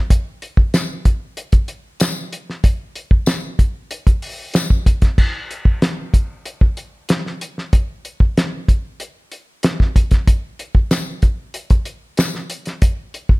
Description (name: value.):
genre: funk.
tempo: 94 BPM.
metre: 4/4.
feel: straight.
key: none.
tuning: none.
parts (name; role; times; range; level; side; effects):
cloth-damped thuddy drum kit; drums; 0.1-13.4 s; crash cymbal, hi-hat, kick drum, snare drum; -15 LUFS; equal; none.
tambourine; percussion; 0.7-4.7, 10.9-12.3 s; none; -26 LUFS; left 5 dB; none.
room: little or no reverb.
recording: none.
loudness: -16 LUFS.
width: side -24 dB against mid.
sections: 0.0-5.2 A section; 5.2-13.4 B section.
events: none.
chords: none.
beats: | 0.10 0.74 1.37 2.00 | 2.64 3.27 3.91 4.54 | 5.18 5.82 6.45 7.09 | 7.73 8.36 9.00 9.64 | 10.27 10.91 11.55 12.18 | 12.82.